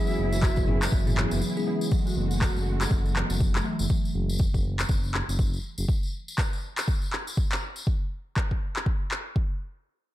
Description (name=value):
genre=afro house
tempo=121 BPM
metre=4/4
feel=swing 59% on 16ths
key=F# minor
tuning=A4 = 438 Hz
part: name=breathy reedy silver concert flute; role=melody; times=0.0-1.4 s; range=E5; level=-38 LUFS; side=right 1 dB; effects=dub echo
part: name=muted symphonic string section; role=sustained chords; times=0.0-3.9 s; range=C#3 to G#4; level=-38 LUFS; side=right 2 dB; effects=sidechain pumping
part: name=bell-like tine electric piano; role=stabs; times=0.0-1.9 s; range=B3 to G#4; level=-34 LUFS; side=left 2 dB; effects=fast stereo tremolo, sidechain pumping, dub echo
part: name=marimba with medium mallets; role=arpeggios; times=0.1-3.7 s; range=E3 to F#4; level=-32 LUFS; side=right 1 dB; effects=sidechain pumping, low-pass filter, dub echo
part: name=tambourine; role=percussion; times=0.1-7.8 s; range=none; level=-39 LUFS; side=left 3 dB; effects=none
part: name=smooth synth bass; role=bass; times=0.2-5.9 s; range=F#1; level=-28 LUFS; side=equal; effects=sidechain pumping
part: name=afro-pop drum kit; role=drums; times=0.4-9.2 s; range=handclaps, toms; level=-31 LUFS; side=equal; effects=overdrive
part: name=electronic kick drum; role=drums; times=0.4-9.5 s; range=none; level=-26 LUFS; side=equal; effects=overdrive
room=light reverb, studio reverb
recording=dark, warm production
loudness=-24 LUFS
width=side -14 dB against mid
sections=0.0-1.9 A section; 1.9-9.8 B section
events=drop 0.0-1.9; break 1.4-1.9; filter sweep on marimba 1.9-3.9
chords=0.0 C#m7/F#; 1.9 F#m9